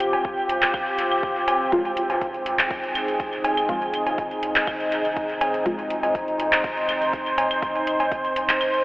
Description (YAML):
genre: dub techno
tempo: 122 BPM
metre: 4/4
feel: straight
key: F minor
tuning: A4 = 443 Hz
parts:
  - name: deep dark ambient pad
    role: sustained chords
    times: 0.0-8.8 s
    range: C4 to C5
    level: -23 LUFS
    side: equal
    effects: chorus, built-in reverb, sidechain pumping
  - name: soft dub sub bass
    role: bass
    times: 0.0-8.6 s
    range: F1 to C2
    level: -51 LUFS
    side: equal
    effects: sidechain pumping
  - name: deep house drum kit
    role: drums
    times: 0.0-8.8 s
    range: handclaps, hi-hat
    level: -26 LUFS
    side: equal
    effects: dub echo
  - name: cowbell and claves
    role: percussion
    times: 0.1-8.7 s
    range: none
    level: -29 LUFS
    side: equal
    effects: sidechain pumping on perc, dub echo
  - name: electronic kick drum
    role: drums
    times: 0.2-8.2 s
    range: none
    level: -32 LUFS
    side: equal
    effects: none
  - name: deep mellow chord stab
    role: stabs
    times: 1.7-5.7 s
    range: F3 to F4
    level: -29 LUFS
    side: equal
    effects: chorus, phaser, sidechain pumping, dub echo
room: wet huge ambient reverb, RT60 4.8 s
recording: dreamy mix soaked in reverb, telephone sound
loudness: -20 LUFS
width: side -20 dB against mid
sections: 0.0-8.8 A section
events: none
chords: 0.0 Fm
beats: 0.25 0.74 1.23 | 1.72 2.21 2.71 3.20 | 3.69 4.18 4.67 5.17 | 5.66 6.15 6.64 7.13 | 7.62 8.12 8.61